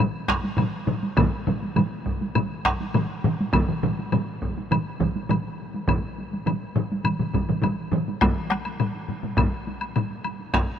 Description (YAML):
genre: japanese traditional, taiko drum ensemble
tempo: 102 BPM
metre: 4/4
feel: straight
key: none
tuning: none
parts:
  - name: solo taiko drums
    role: percussion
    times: 0.3-10.7 s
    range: none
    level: -28 LUFS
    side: equal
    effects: none
  - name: taiko ensemble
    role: percussion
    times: 0.3-10.8 s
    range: none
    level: -30 LUFS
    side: right 1 dB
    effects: none
  - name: taiko ensemble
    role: percussion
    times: 0.3-10.1 s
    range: none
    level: -28 LUFS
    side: left 3 dB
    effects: none
  - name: taiko ensemble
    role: percussion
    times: 0.3-10.7 s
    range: none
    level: -28 LUFS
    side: right 2 dB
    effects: none
  - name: woodblock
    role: percussion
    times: 0.6-10.7 s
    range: none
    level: -33 LUFS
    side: left 3 dB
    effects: none
room: moderate huge ambient reverb, RT60 6.9 s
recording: minimal, uncompressed stereo recording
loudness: -22 LUFS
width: side -9 dB against mid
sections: 0.0-8.2 A section; 8.2-10.8 B section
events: none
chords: none